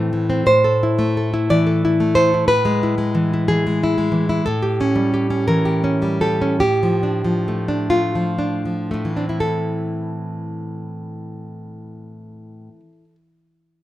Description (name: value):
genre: romantic piece for solo classical guitar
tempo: 37-63 BPM (dotted quarters)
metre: 6/8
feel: rubato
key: A minor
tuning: A4 = 440 Hz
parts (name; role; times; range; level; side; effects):
- nylon-string guitar; solo; 0.0-13.2 s; A2 to D5; -17 LUFS; equal; none
room: moderate small room reverb, RT60 0.6 s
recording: none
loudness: -16 LUFS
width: side -14 dB against mid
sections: 0.5-9.4 A section; 9.4-13.8 B section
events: slowing down 3.5-9.4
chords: 0.5 Am; 2.5 E/A; 4.4 A7; 6.6 Dm/A; 9.4 Am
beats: | 0.46 1.48 | 2.47 3.47 | 4.44 5.47 | 6.61 7.92 | 9.43 10.88 | 12.35